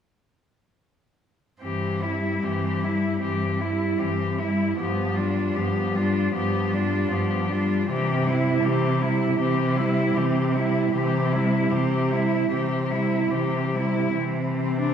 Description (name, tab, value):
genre	classical, lyrical piece for cello ensemble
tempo	77 BPM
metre	4/4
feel	rubato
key	C major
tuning	A4 = 440 Hz
part	rich cello	melody	1.6-14.9 s	C4 to G4	-29 LUFS	left 5 dB	none
part	warm cello	second line	1.6-14.9 s	B3 to E4	-27 LUFS	right 5 dB	none
part	rich cello	accompaniment	1.6-14.9 s	E3 to G3	-27 LUFS	left 3 dB	none
part	rich cello	bass	1.6-14.9 s	G2 to C3	-26 LUFS	right 1 dB	none
room	wet recital hall reverb, RT60 1.6 s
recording	recorded in a church or concert hall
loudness	-21 LUFS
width	side -8 dB against mid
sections	1.6-14.2 A section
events	none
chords	1.6 C/G; 4.8 G7; 7.9 C